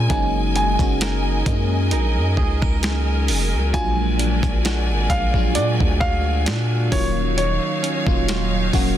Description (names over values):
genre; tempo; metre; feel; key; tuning
contemporary R&B; 66 BPM; 4/4; swing 54% on 16ths; Bb minor; A4 = 440 Hz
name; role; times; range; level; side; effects
warm grand piano; melody; 0.0-9.0 s; Db5 to Bb5; -26 LUFS; left 1 dB; ping-pong delay
FM electric piano; accompaniment; 0.0-9.0 s; Gb3 to Gb4; -26 LUFS; left 2 dB; chorus, phaser
clear studio string section; sustained chords; 0.0-9.0 s; Gb3 to Ab5; -28 LUFS; left 1 dB; none
direct-recorded clean electric guitar; arpeggios; 0.0-9.0 s; Bb2 to C5; -29 LUFS; right 9 dB; ping-pong delay
long sustained 808-style bass; bass; 0.0-9.0 s; Eb1 to Bb2; -21 LUFS; equal; none
dusty soul sampler-style drum kit; drums; 0.1-9.0 s; hi-hat, kick drum, snare drum; -23 LUFS; equal; none
room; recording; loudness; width
digital ambience; dense, heavily limited modern master; -17 LUFS; side -11 dB against mid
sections
0.0-9.0 A section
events
none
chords
0.1 Gb69; 3.7 Bb7b13; 6.9 Ebm9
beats
| 0.10 1.01 1.92 2.83 | 3.74 4.65 5.55 6.46 | 7.37 8.28